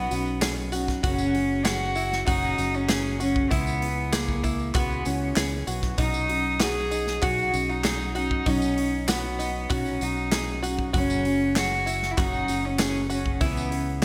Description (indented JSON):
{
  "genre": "indie folk with a building arrangement",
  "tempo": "97 BPM",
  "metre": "4/4",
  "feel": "straight",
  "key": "B major",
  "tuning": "A4 = 439 Hz",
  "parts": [
    { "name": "rich cello", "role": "melody", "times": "0.0-14.0 s", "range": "A#3 to G#4", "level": "-30 LUFS", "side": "equal", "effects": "delay" },
    { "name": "picked steel-string acoustic guitar", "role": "accompaniment", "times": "0.0-14.0 s", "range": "F#2 to G#4", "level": "-35 LUFS", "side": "equal", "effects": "analog chorus" },
    { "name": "open-back banjo", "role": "arpeggios", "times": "0.0-14.0 s", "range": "D#4 to G#4", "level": "-35 LUFS", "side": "equal", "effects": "none" },
    { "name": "fingered electric bass", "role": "bass", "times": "0.0-14.0 s", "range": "F#1 to C#2", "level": "-33 LUFS", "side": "equal", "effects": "none" },
    { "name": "natural country drum kit", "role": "drums", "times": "0.1-14.0 s", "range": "hi-hat, kick drum, snare drum", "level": "-31 LUFS", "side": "equal", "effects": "gated reverb" },
    { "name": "tambourine", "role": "percussion", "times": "0.1-13.7 s", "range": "none", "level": "-43 LUFS", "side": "equal", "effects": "none" },
    { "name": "group handclap", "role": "percussion", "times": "0.4-14.0 s", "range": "none", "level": "-37 LUFS", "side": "equal", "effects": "none" }
  ],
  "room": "moderate lush hall reverb, RT60 2.1 s",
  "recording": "bright 1980s-style digital production",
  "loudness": "-25 LUFS",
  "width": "mono",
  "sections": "0.0-14.0 A section",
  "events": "none",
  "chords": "0.0 Badd9; 1.0 F#sus2; 3.5 C#m7; 6.0 Badd9; 10.9 F#sus2; 13.4 C#m7",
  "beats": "0.42 | 1.04 1.66 2.27 2.89 | 3.51 4.13 4.75 5.37 | 5.99 6.60 7.22 7.84 | 8.46 9.08 9.70 10.31 | 10.93 11.55 12.17 12.79 | 13.41 14.03"
}